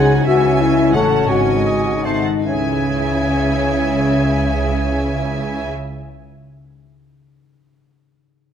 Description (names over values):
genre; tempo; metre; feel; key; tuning
classical, dramatic, fast romantic movement for symphony orchestra; 143-186 BPM; 3/4; rubato; C# minor; A4 = 440 Hz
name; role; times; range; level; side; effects
clear symphonic violin section; melody; 0.0-5.7 s; F#5 to A5; -28 LUFS; equal; none
clear clarinet; second line; 0.0-5.7 s; G#4 to C#6; -29 LUFS; equal; none
flute section; second line; 0.0-5.7 s; C#5 to A5; -27 LUFS; left 1 dB; none
rich symphonic violin section; second line; 0.0-5.7 s; D#5 to F#5; -29 LUFS; left 1 dB; none
warm oboe; second line; 0.0-5.7 s; B#4 to G#5; -28 LUFS; right 2 dB; none
clear symphonic viola section; accompaniment; 0.0-5.7 s; B#3 to E4; -30 LUFS; right 3 dB; none
warm bassoon; accompaniment; 0.0-5.7 s; E3 to A3; -27 LUFS; right 3 dB; none
dark French horn section; sustained chords; 0.0-5.7 s; C#4 to A4; -19 LUFS; left 2 dB; none
concert harp; arpeggios; 0.0-6.5 s; G#2 to E5; -25 LUFS; left 8 dB; none
rich symphonic cello section; bass; 0.0-5.7 s; G#2 to C#3; -24 LUFS; right 2 dB; none
rich symphonic double bass section; bass; 0.0-5.7 s; G#1 to C#2; -23 LUFS; right 3 dB; none
room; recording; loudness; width
moderate concert hall reverb, RT60 1.8 s; none; -15 LUFS; side -8 dB against mid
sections
0.0-2.5 A section; 2.5-4.9 B section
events
slowing down 0.0-2.5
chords
0.3 C#m; 0.9 F#m/A; 1.3 G#7sus4; 2.1 G#7b9; 2.5 C#m